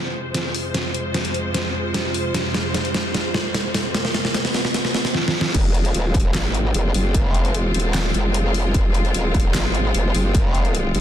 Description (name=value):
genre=heavy wobble dubstep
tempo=150 BPM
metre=4/4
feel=half-time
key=F phrygian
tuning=A4 = 439 Hz
part: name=rich studio string section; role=sustained chords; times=0.0-11.0 s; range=F2 to C5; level=-26 LUFS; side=equal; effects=sidechain pumping, low-pass filter
part: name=dubstep drum kit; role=drums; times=0.3-11.0 s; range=crash cymbal, handclaps, hi-hat, snare drum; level=-23 LUFS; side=equal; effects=none
part: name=growl bass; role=bass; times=5.5-11.0 s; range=Eb1 to Ab1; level=-20 LUFS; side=equal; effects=chorus, overdrive
part: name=electronic kick drum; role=drums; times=5.5-10.4 s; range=none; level=-20 LUFS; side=equal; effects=distortion
room=light reverb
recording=dense, heavily limited modern master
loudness=-18 LUFS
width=side -11 dB against mid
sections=0.0-5.5 A section; 5.5-11.0 B section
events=build-up 0.0-5.5; drum fill 0.0-5.1, 5.1-5.5; drop 5.5-11.0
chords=0.0 Fm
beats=0.34 | 0.74 1.15 1.54 1.95 | 2.35 2.75 3.15 3.54 | 3.94 4.34 4.75 5.14 | 5.54 5.95 6.34 6.75 | 7.14 7.54 7.95 8.35 | 8.74 9.14 9.54 9.95 | 10.35 10.74